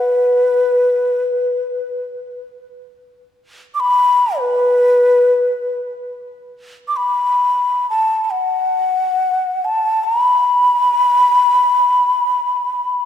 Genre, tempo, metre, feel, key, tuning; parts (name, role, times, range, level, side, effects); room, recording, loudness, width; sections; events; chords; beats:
world meditative; free time; A4 = 439 Hz
breathy mellow bansuri; solo; 0.0-13.1 s; B4 to D6; -13 LUFS; left 1 dB; ping-pong delay
wet concert hall reverb, RT60 2.2 s; -13 LUFS; side -9 dB against mid
0.0-6.0 A section; 6.0-13.1 A section
free time